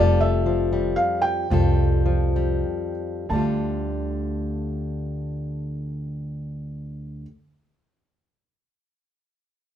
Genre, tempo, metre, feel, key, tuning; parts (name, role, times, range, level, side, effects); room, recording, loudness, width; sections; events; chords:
acoustic folk duo or small band; 90-122 BPM; 3/4; straight; D minor; A4 = 441 Hz
felt-muted upright piano; melody; 0.0-7.2 s; D5 to A5; -25 LUFS; right 1 dB
fingerpicked plugged-in steel-string acoustic guitar; accompaniment; 0.0-7.3 s; D2 to A4; -25 LUFS; left 2 dB
upright bass; bass; 0.0-7.2 s; F1 to D2; -25 LUFS; right 1 dB
moderate studio reverb, RT60 0.7 s; minimal, uncompressed stereo recording; -22 LUFS; side -10 dB against mid
0.0-3.3 A section; 3.3-7.3 B section
slowing down 0.0-3.3
0.0 Fadd9; 3.3 Dm